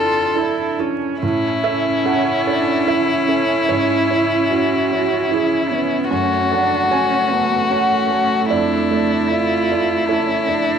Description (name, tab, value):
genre	neoclassical piano and strings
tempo	75 BPM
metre	3/4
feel	rubato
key	A major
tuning	A4 = 442 Hz
part	muted violin	melody	0.0-10.8 s	E4 to A4	-18 LUFS	left 5 dB	none
part	muted cello	second line	0.0-10.8 s	B3 to F#4	-23 LUFS	right 6 dB	none
part	felt-muted upright piano	accompaniment	0.0-10.8 s	F2 to G#5	-22 LUFS	right 6 dB	none
part	muted viola	accompaniment	0.0-10.8 s	A3 to F4	-23 LUFS	right 3 dB	none
room	moderate echo chamber reverb, RT60 1.8 s, small room ambience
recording	1960s-style stereo, vinyl crackle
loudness	-15 LUFS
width	side -7 dB against mid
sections	0.0-1.2 A section; 1.2-10.8 B section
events	none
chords	0.0 Dmadd9/F; 1.2 A; 3.7 C#m/G#; 6.1 F#m; 8.5 Dmadd9/F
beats	0.36 | 1.22 2.05 2.87 | 3.69 4.51 5.31 | 6.11 6.91 7.71 | 8.51 9.30 10.09